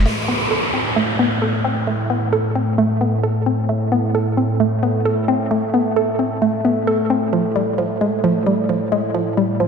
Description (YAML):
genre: techno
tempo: 132 BPM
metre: 4/4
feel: straight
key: A minor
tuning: A4 = 440 Hz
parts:
  - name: analog drone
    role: drone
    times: 0.0-9.7 s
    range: A2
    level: -20 LUFS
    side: equal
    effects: chorus
  - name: woody wave-folded pluck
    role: riff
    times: 0.1-9.6 s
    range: F3 to A4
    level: -19 LUFS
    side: equal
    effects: chorus, dub echo
  - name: downlifter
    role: sound effects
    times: 0.1-3.7 s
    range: none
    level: -23 LUFS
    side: equal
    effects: none
room: wet echo chamber reverb, RT60 1.6 s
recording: echo-heavy mix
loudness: -16 LUFS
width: side -6 dB against mid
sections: 0.1-9.7 A section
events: none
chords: none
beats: | 0.06 0.51 0.96 1.42 | 1.87 2.33 2.78 3.24 | 3.69 4.15 4.60 5.05 | 5.51 5.96 6.42 6.87 | 7.33 7.78 8.24 8.69 | 9.15 9.60